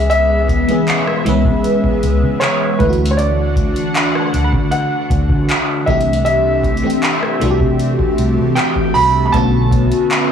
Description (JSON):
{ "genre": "contemporary R&B", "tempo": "78 BPM", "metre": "4/4", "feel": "straight", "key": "unclear", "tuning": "A4 = 435 Hz", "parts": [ { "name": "warm baby grand piano", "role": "melody", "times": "0.0-10.3 s", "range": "B4 to B5", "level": "-19 LUFS", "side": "right 1 dB", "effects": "digital delay" }, { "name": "FM electric piano with soft pad layer", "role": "accompaniment", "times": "0.0-10.3 s", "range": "D3 to B4", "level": "-17 LUFS", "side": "left 1 dB", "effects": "chorus, phaser" }, { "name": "lush unison pad", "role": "sustained chords", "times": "0.0-10.3 s", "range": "C#3 to F#5", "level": "-24 LUFS", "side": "left 1 dB", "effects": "chorus, sidechain pumping" }, { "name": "vintage muted fingered electric bass", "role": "bass", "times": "0.0-9.9 s", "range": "B1 to D3", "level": "-17 LUFS", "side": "equal", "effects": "none" }, { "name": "soft round pluck", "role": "texture", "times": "0.0-5.8 s", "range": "F#5 to B5", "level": "-29 LUFS", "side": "right 4 dB", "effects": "chorus, phaser, digital delay" }, { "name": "booming analog drum machine", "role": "drums", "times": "0.1-10.3 s", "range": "handclaps, hi-hat, kick drum, rim click", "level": "-18 LUFS", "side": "equal", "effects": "none" } ], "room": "light reverb", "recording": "blown-out, overdriven recording, overdrive, small room ambience", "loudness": "-12 LUFS", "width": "side -8 dB against mid", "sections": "0.0-10.3 A section", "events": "none", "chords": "0.0 C#m7; 2.8 D; 5.9 C6; 9.3 Bm7" }